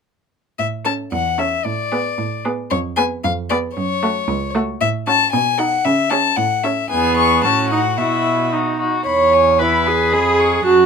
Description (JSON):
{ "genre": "quick classical-period movement for string quartet", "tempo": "114 BPM", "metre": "2/4", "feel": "straight", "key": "A major, E major from 4.8 s", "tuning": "A4 = 440 Hz", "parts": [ { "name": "rich violin", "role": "melody", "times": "0.6-10.9 s", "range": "C#5 to C#6", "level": "-19 LUFS", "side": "left 8 dB", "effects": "none" }, { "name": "rich cello", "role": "bass", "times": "0.6-10.9 s", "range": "C#2 to C#3", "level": "-23 LUFS", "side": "right 5 dB", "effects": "none" }, { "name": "dark violin", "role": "second line", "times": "0.8-10.6 s", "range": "F#4 to C#5", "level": "-19 LUFS", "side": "equal", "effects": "none" }, { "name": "rich viola", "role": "accompaniment", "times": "0.9-10.9 s", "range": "A3 to G#4", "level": "-19 LUFS", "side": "right 3 dB", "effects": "none" } ], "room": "light reverb", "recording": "minimal, uncompressed stereo recording", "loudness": "-15 LUFS", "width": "side -6 dB against mid", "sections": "0.6-9.1 A section; 9.1-10.9 B section", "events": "none", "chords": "0.6 A; 1.7 Asus24; 2.7 Fdim; 3.8 F#m; 4.8 F#m/A; 5.3 B7; 5.9 C#m; 6.4 A; 6.9 E; 7.4 F#m/A; 8.0 Bsus4; 8.5 B; 9.1 E; 10.1 C#7/E#", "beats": "| 0.59 1.12 | 1.65 2.18 | 2.71 3.24 | 3.76 4.29 | 4.81 5.33 | 5.85 6.38 | 6.91 7.44 | 7.98 8.53 | 9.07 9.60 | 10.13 10.65" }